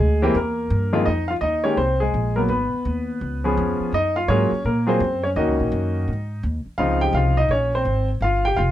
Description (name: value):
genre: jazz piano trio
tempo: 168 BPM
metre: 4/4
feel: swing 63% on 8ths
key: unclear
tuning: A4 = 440 Hz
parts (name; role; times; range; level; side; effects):
- clear baby grand piano; melody; 0.0-8.7 s; F2 to G5; -20 LUFS; equal; none
- upright bass; bass; 0.0-8.7 s; F1 to Bb2; -23 LUFS; equal; none
room: light reverb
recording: dark, warm production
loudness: -19 LUFS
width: side -12 dB against mid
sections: 0.0-1.1 A section; 1.1-8.7 B section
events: none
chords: 0.3 Edim; 1.1 Fm11; 2.5 Abm; 3.2 Db7; 3.9 Gbmaj9; 5.4 Ebm7; 6.1 Ab5; 6.8 Dbmaj9